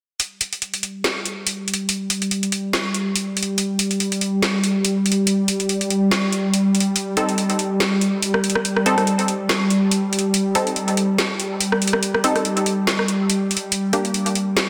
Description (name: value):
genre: deep dubstep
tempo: 142 BPM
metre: 4/4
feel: swing 56% on 16ths, half-time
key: unclear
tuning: A4 = 439 Hz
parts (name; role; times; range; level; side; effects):
- bowed-like drone; sustained chords; 1.0-14.7 s; G3; -23 LUFS; equal; built-in reverb
- garage drum kit; drums; 0.2-14.7 s; hi-hat, rim click, snare drum; -24 LUFS; equal; overdrive, studio reverb
- filtered dub chord stab; stabs; 7.2-14.1 s; Bb3 to A4; -26 LUFS; equal; chorus, dub echo
room: wet echo chamber reverb, RT60 1.4 s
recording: dense, heavily limited modern master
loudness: -20 LUFS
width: mono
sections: 0.2-13.7 A section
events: filter sweep on synth drone 0.2-13.7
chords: 0.2 N.C.; 7.0 Adim; 13.7 Gm